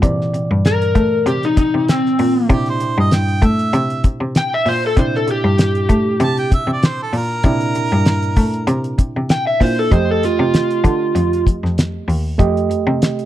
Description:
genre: straight-eighth soul blues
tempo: 97 BPM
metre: 4/4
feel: swing 54% on 16ths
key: C mixolydian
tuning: A4 = 440 Hz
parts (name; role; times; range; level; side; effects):
- bright reed electric piano; accompaniment; 0.0-13.3 s; Bb2 to Eb5; -23 LUFS; right 3 dB; none
- bright cello; bass; 0.0-13.3 s; Eb2 to A3; -19 LUFS; left 1 dB; none
- cloth-damped thuddy drum kit; drums; 0.0-13.3 s; hi-hat, kick drum, snare drum; -15 LUFS; equal; none
- overdriven slide guitar; melody; 0.7-11.4 s; C4 to G5; -17 LUFS; equal; slapback echo
- clear harmonica; second line; 2.5-9.0 s; G4 to A5; -22 LUFS; right 2 dB; overdrive
room: studio reverb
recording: dry, close 1970s-style studio recording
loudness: -14 LUFS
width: side -13 dB against mid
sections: 0.0-13.3 A section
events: none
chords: 0.0 C9; 9.9 F9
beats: | 0.03 0.65 1.27 1.89 | 2.50 3.12 3.74 4.36 | 4.98 5.59 6.21 6.83 | 7.45 8.07 8.69 9.30 | 9.92 10.54 11.16 11.78 | 12.39 13.01

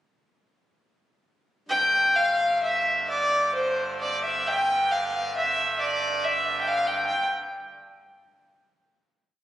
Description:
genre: medieval dance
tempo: 128-151 BPM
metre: 3/4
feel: straight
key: unclear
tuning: A4 = 439 Hz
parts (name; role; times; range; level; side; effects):
- warm fiddle; melody; 1.7-7.3 s; C5 to G5; -22 LUFS; equal; none
- pipe organ, trumpet; drone; 1.7-7.1 s; G2 to D3; -32 LUFS; right 1 dB; none
room: wet concert hall reverb, RT60 1.9 s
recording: recorded on a phone in the room, studio reverb, compression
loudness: -22 LUFS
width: side -13 dB against mid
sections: 1.7-7.1 A section; 7.1-8.3 final note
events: speeding up 1.7-8.3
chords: none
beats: | 1.68 2.15 2.62 | 3.08 3.54 4.00 | 4.45 4.90 5.34 | 5.78 6.21 6.64 | 7.06

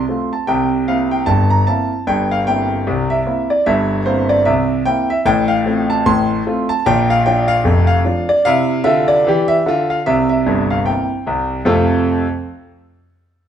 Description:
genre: ragtime piano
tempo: 75 BPM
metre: 2/4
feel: swing 58% on 16ths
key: F major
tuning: A4 = 440 Hz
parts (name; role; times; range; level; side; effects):
- warm concert grand piano; solo; 0.0-12.3 s; F1 to C6; -13 LUFS; equal; none
room: wet stone room reverb, RT60 1.2 s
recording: band playing live in one room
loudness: -13 LUFS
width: side -9 dB against mid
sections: 0.0-11.7 A section; 11.7-13.3 B section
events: none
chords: 0.5 C7/G; 5.3 F/A; 6.9 Bb; 8.5 F5/C; 10.1 C7; 11.7 F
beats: | 0.48 1.28 | 2.08 2.87 | 3.67 4.47 | 5.26 6.06 | 6.86 7.66 | 8.46 9.26 | 10.06 10.87 | 11.67

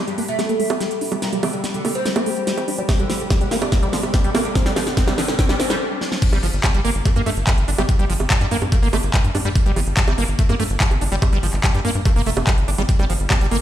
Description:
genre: psychedelic trance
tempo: 144 BPM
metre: 4/4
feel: straight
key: G minor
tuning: A4 = 440 Hz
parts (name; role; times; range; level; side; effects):
- pulsing gated texture; sustained chords; 0.0-5.8 s; G3 to G4; -30 LUFS; left 2 dB; chorus, built-in reverb, sidechain pumping
- liquid acid bass; riff; 0.0-13.6 s; F3 to D4; -25 LUFS; right 1 dB; chorus, auto-pan, sidechain pumping, dub echo
- riser; sound effects; 0.1-5.8 s; none; -33 LUFS; equal; none
- oud; melody; 0.1-5.8 s; G2 to D4; -26 LUFS; equal; phaser, sidechain pumping, digital delay
- big-room dance drum kit; drums; 0.1-13.6 s; bongos, crash cymbal, handclaps, hi-hat, snare drum; -23 LUFS; right 2 dB; none
- electronic kick drum; drums; 2.9-13.4 s; none; -17 LUFS; equal; none
- tight sequencer bass; bass; 6.3-13.6 s; F1 to G2; -21 LUFS; equal; none
room: light reverb, digital ambience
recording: played on a big sound system in a bare room, stone room reverb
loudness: -17 LUFS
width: side -11 dB against mid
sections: 0.0-6.2 A section; 6.2-13.6 B section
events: build-up 0.0-6.2; drum fill 0.0-5.8, 6.0; filter sweep on acid bass 0.0-6.2; stop 5.8-6.2; drop 6.2-13.6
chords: 0.0 G5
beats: 0.39 0.81 | 1.22 1.64 2.06 2.47 | 2.89 3.31 3.72 4.14 | 4.55 4.97 5.39 5.80 | 6.22 6.64 7.05 7.47 | 7.89 8.30 8.72 9.14 | 9.55 9.97 10.39 10.80 | 11.22 11.64 12.05 12.47 | 12.89 13.30

